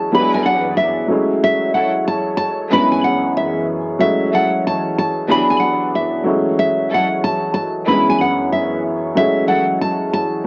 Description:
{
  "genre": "hip hop",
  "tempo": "93 BPM",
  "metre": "4/4",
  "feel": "swing 62% on 16ths",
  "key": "F# minor",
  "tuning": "A4 = 440 Hz",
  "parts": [
    { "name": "nylon-string guitar", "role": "melody", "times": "0.0-10.4 s", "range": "E5 to B5", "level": "-20 LUFS", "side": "equal", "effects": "high-pass filter, low-pass filter, cassette tape" },
    { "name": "warm upright piano", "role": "accompaniment", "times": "0.0-10.5 s", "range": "F#2 to G#4", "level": "-21 LUFS", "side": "equal", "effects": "high-pass filter, low-pass filter, cassette tape" },
    { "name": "dark analog pad", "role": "sustained chords", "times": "0.0-10.5 s", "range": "F#2 to D5", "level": "-30 LUFS", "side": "equal", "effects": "chorus, high-pass filter, low-pass filter, cassette tape" },
    { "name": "clear studio string section", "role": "stabs", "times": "0.1-9.7 s", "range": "E3 to B4", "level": "-27 LUFS", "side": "equal", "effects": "high-pass filter, low-pass filter, cassette tape, analog delay" }
  ],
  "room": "light reverb",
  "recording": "home recording on cassette",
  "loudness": "-17 LUFS",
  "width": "mono",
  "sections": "0.0-10.5 A section",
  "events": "none",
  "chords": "0.1 E7/F#; 1.1 F#m7; 2.7 C#m7/F#; 4.0 F#m7; 5.3 E7/F#; 6.3 F#m7; 7.9 C#m7/F#; 9.2 F#m7",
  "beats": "0.14 0.78 | 1.43 2.07 2.72 3.36 | 4.01 4.65 5.30 5.94 | 6.59 7.23 7.88 8.52 | 9.17 9.81 10.46"
}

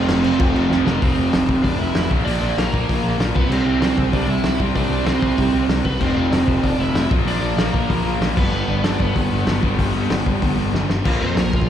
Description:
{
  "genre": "punk rock",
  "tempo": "192 BPM",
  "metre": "4/4",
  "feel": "straight",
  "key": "unclear",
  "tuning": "A4 = 440 Hz",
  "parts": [
    { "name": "biting lead guitar", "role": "melody", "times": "0.0-11.7 s", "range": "Bb3 to E5", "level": "-23 LUFS", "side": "right 2 dB", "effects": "overdrive" },
    { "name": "crunchy overdriven guitar", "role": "riff", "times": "0.0-11.7 s", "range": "F2 to C4", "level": "-25 LUFS", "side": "right 10 dB", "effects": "slapback echo" },
    { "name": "distorted electric guitar", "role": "riff", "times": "0.0-11.7 s", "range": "F2 to C4", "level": "-26 LUFS", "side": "left 14 dB", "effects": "distortion, slapback echo" },
    { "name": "distorted electric guitar", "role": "riff", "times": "0.0-11.7 s", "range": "F2 to C4", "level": "-31 LUFS", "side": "equal", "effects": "none" },
    { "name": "fuzz picked electric bass", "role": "bass", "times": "0.0-11.7 s", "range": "F1 to F2", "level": "-22 LUFS", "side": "left 1 dB", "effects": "overdrive" },
    { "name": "loose indie drum kit", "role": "drums", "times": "0.1-11.7 s", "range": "crash cymbal, hi-hat, kick drum, snare drum", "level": "-22 LUFS", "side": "left 1 dB", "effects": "none" }
  ],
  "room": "little or no reverb",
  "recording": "live gig heard through the venue's PA, recital hall reverb",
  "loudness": "-16 LUFS",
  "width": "side -10 dB against mid",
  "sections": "0.0-1.0 A section; 1.0-11.1 B section",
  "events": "drum fill 0.7-1.0, 10.7-11.1",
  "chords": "0.0 F5; 2.1 Bb; 3.4 C; 6.0 F5; 7.1 Bb; 8.4 G; 11.1 Bb5",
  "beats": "0.09 0.40 0.71 | 1.02 1.33 1.64 1.95 | 2.27 2.58 2.89 3.20 | 3.51 3.82 4.13 4.44 | 4.75 5.07 5.38 5.69 | 6.00 6.32 6.63 6.95 | 7.26 7.58 7.89 8.21 | 8.52 8.84 9.15 9.47 | 9.79 10.10 10.42 10.73 | 11.05 11.37 11.69"
}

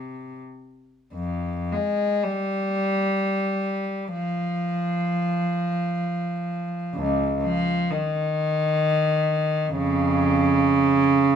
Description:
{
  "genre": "classical, free, expressive piece for unaccompanied cello",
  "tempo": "34-69 BPM",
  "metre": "3/4",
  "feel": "rubato",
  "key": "F minor",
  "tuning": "A4 = 439 Hz",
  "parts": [
    { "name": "rich cello", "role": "solo", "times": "0.0-11.4 s", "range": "Db2 to Ab3", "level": "-21 LUFS", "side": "equal", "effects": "none" }
  ],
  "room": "light reverb",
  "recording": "minimal, uncompressed stereo recording",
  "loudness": "-21 LUFS",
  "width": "side -8 dB against mid",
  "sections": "0.0-1.1 A section; 1.1-11.4 B section",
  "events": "none",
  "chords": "none",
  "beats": "| 1.13 2.23 3.19 | 4.12 5.08 6.00 | 6.93 7.89 8.81 | 9.69 10.59"
}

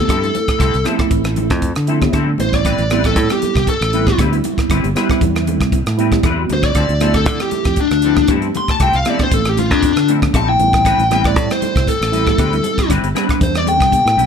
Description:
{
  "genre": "electric jazz fusion",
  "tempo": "117 BPM",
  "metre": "4/4",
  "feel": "swing 54% on 16ths",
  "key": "D minor",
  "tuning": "A4 = 439 Hz",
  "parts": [
    { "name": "smooth overdriven lead guitar", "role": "melody", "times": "0.0-14.3 s", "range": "D4 to C6", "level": "-17 LUFS", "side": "left 2 dB", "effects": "tape echo" },
    { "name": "mellow tine electric piano", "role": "accompaniment", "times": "0.0-14.3 s", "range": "F3 to G4", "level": "-21 LUFS", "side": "right 4 dB", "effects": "ensemble chorus" },
    { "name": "fingered electric bass", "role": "bass", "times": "0.0-14.3 s", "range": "G1 to D3", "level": "-18 LUFS", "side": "equal", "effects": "none" },
    { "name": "clean electric guitar", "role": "stabs", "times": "0.1-14.3 s", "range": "F3 to B4", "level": "-26 LUFS", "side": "left 6 dB", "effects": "ensemble chorus, tape echo" },
    { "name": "crisp fusion drum kit", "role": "drums", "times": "0.1-14.3 s", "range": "hi-hat, kick drum, rim click", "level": "-19 LUFS", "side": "equal", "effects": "none" },
    { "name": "congas", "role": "percussion", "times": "0.1-14.1 s", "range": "none", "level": "-26 LUFS", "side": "left 5 dB", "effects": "none" }
  ],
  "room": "light reverb",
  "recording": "dark, warm production",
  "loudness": "-13 LUFS",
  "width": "side -7 dB against mid",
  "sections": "0.0-14.3 A section",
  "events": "lead electric guitar solo 0.0-14.3",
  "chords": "0.0 Dm9; 2.4 Am9; 6.8 Dm9; 10.6 Am9",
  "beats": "0.09 | 0.60 1.11 1.63 2.14 | 2.65 3.17 3.68 4.19 | 4.70 5.22 5.73 6.24 | 6.76 7.27 7.78 8.29 | 8.81 9.32 9.83 10.35 | 10.86 11.37 11.88 12.39 | 12.90 13.41 13.93"
}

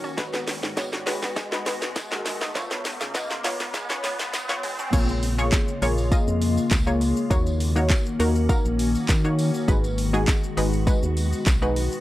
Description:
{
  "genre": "dance-pop",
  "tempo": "101 BPM",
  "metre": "4/4",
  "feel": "straight",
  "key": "G# dorian",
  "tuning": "A4 = 441 Hz",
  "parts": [
    { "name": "analog pluck", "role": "accompaniment", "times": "0.0-12.0 s", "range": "G#3 to D#5", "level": "-27 LUFS", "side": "left 1 dB", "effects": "chorus, sidechain pumping" },
    { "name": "glassy FM pad", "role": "sustained chords", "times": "0.0-12.0 s", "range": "C#3 to F#4", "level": "-31 LUFS", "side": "left 2 dB", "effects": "ensemble chorus, built-in reverb, sidechain pumping" },
    { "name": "wide unison pluck", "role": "arpeggios", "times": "0.0-4.9 s", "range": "E#3 to F#4", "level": "-35 LUFS", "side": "right 1 dB", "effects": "sidechain pumping, analog delay" },
    { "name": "organ-like FM bass", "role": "bass", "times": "0.0-11.9 s", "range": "G#1 to D#3", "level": "-25 LUFS", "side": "equal", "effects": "sidechain pumping" },
    { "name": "tambourine", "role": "percussion", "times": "0.0-11.9 s", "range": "none", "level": "-41 LUFS", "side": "right 2 dB", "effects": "none" },
    { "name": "riser", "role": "sound effects", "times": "0.3-4.9 s", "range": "none", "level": "-35 LUFS", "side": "right 1 dB", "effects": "none" },
    { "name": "house drum kit", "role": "drums", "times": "0.2-12.0 s", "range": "crash cymbal, handclaps, hi-hat, kick drum, shaker, snare drum", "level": "-25 LUFS", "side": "equal", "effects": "none" }
  ],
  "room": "little or no reverb",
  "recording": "dry, gritty hardware recording, high-pass filter",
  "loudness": "-21 LUFS",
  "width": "side -16 dB against mid",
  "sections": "0.0-4.9 A section; 4.9-12.0 B section",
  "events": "build-up 0.0-4.9; drum fill 0.0-4.9; riser 0.3-4.9; drop 4.9-12.0",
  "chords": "0.2 G#m7; 2.6 C#7; 4.9 A#m7; 7.3 D#m7; 9.7 G#m7",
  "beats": "| 0.18 0.77 1.37 1.96 | 2.55 3.15 3.74 4.34 | 4.93 5.52 6.12 6.71 | 7.31 7.90 8.49 9.09 | 9.68 10.28 10.87 11.46"
}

